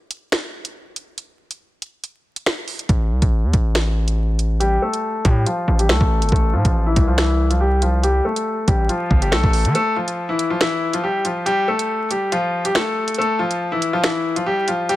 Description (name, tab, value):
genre	hip hop, drill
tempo	140 BPM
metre	4/4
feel	half-time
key	A minor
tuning	A4 = 439 Hz
part	drill drum kit	drums	0.1-15.0 s	finger snaps, hi-hat, kick drum, snare drum	-20 LUFS	equal	vintage 12-bit sampler grit
part	distorted 808-style bass	bass	2.9-9.7 s	G1 to E3	-18 LUFS	equal	distortion
part	bright grand piano	melody	4.6-15.0 s	E3 to A4	-19 LUFS	left 2 dB	low-pass filter
room	little or no reverb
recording	vinyl crackle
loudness	-17 LUFS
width	side -15 dB against mid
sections	0.0-15.0 A section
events	break 0.0-4.6, 9.7-15.0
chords	0.0 N.C.; 2.9 Am; 9.7 A5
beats	0.32 0.75 | 1.18 1.61 2.04 2.46 | 2.89 3.32 3.75 4.18 | 4.61 5.04 5.46 5.89 | 6.32 6.75 7.18 7.61 | 8.04 8.46 8.89 9.32 | 9.75 10.18 10.61 11.04 | 11.46 11.89 12.32 12.75 | 13.18 13.61 14.04 14.46 | 14.89